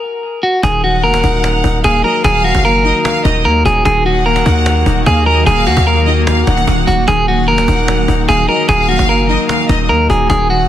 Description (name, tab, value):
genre	hip hop, trap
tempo	149 BPM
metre	4/4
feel	half-time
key	Eb minor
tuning	A4 = 440 Hz
part	clean electric guitar	melody	0.0-10.7 s	Gb4 to Bb4	-14 LUFS	right 1 dB	spring reverb, tape echo
part	dark baby grand piano	accompaniment	0.6-10.7 s	Eb3 to Eb4	-19 LUFS	left 5 dB	none
part	granular cloud pad	sustained chords	2.2-10.7 s	Eb3 to Gb4	-21 LUFS	equal	built-in reverb
part	hard-hitting 808-style bass	bass	0.6-10.7 s	Eb1 to Eb2	-15 LUFS	equal	none
part	cajon	drums	0.6-10.6 s	none	-21 LUFS	equal	none
part	rich studio violin section	second line	0.8-10.7 s	Eb5 to Gb5	-20 LUFS	equal	tape echo
room	small room reverb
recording	dense, heavily limited modern master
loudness	-10 LUFS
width	side -11 dB against mid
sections	0.6-10.7 A section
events	stop 0.0-0.6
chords	0.0 N.C.; 0.6 Ebm